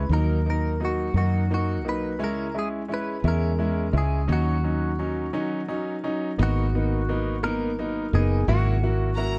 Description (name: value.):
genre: six-eight pop ballad.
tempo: 57 BPM (dotted quarters).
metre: 6/8.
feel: straight.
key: unclear.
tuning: A4 = 440 Hz.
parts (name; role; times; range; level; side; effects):
direct-recorded clean electric guitar; melody; 0.0-9.2 s; F#4 to B4; -34 LUFS; equal; analog chorus.
fingerpicked steel-string acoustic guitar; arpeggios; 0.0-9.4 s; G#2 to A#4; -37 LUFS; equal; none.
fingered electric bass; bass; 0.0-9.4 s; F#1 to F#2; -26 LUFS; equal; none.
clear concert grand piano; accompaniment; 0.1-9.4 s; F#3 to F#4; -31 LUFS; equal; none.
warm studio violin section; second line; 9.2-9.4 s; A#5; -34 LUFS; equal; none.
room: little or no reverb.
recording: cassette tape.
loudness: -25 LUFS.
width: mono.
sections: 0.0-6.4 A section; 6.4-9.4 B section.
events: break 5.3-6.4.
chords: 0.1 D#m; 2.2 C#m; 4.3 D#m7; 6.4 Bmaj7/G#; 8.5 F#7/G#.